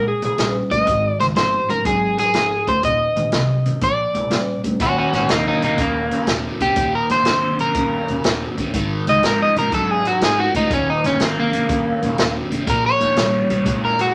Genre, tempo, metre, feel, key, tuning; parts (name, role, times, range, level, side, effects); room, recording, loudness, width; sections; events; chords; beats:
electric blues shuffle; 122 BPM; 4/4; swing 68% on 8ths; Eb mixolydian; A4 = 438 Hz
electric slide guitar; second line; 0.0-0.6 s; Ab4; -24 LUFS; equal
overdriven semi-hollow guitar; riff; 0.0-14.1 s; Eb2 to Ab3; -26 LUFS; equal; phaser
upright bass; bass; 0.0-14.0 s; Eb1 to Eb2; -28 LUFS; equal
vintage drum kit; drums; 0.2-14.1 s; hi-hat, kick drum, snare drum; -26 LUFS; equal
electric guitar at the edge of break-up; melody; 0.7-14.1 s; Bb3 to Eb5; -21 LUFS; equal; vibrato effect
moderate studio reverb, RT60 0.7 s; -19 LUFS; mono
0.0-4.8 A section; 4.8-14.1 B section
clean electric guitar solo 4.8-14.1
0.0 Bb7(no3); 0.9 Ab5; 2.8 Eb5; 3.8 Bb7; 4.8 Eb7; 8.7 Ab5; 10.7 Eb7; 12.7 Bb7(no3)
0.38 | 0.87 1.36 1.86 2.35 | 2.84 3.33 3.82 4.31 | 4.80 5.30 5.79 6.28 | 6.77 7.26 7.75 8.25 | 8.74 9.23 9.72 10.21 | 10.71 11.20 11.69 12.18 | 12.67 13.16 13.66